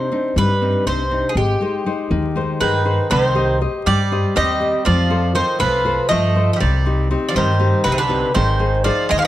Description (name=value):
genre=greek folk, Greek bouzouki band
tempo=240 BPM (eighths)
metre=7/8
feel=straight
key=unclear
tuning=A4 = 440 Hz
part: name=Greek bouzouki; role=melody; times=0.0-9.3 s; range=G4 to F5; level=-20 LUFS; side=right 1 dB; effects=none
part: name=nylon-string guitar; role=accompaniment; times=0.0-9.3 s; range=C3 to Eb5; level=-22 LUFS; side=left 3 dB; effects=none
part: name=upright bass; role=bass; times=0.4-9.3 s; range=Ab1 to G2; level=-20 LUFS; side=equal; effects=none
part: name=Greek bouzouki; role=second line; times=2.6-9.3 s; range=C3 to A3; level=-24 LUFS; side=right 3 dB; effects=none
room=light reverb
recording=close, detailed microphones, vinyl crackle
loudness=-15 LUFS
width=side -14 dB against mid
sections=0.0-3.1 A section; 3.1-9.3 B section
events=none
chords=0.0 Cmadd9; 1.4 Ab; 3.1 Cm; 4.9 F; 6.6 Cm; 8.4 Ab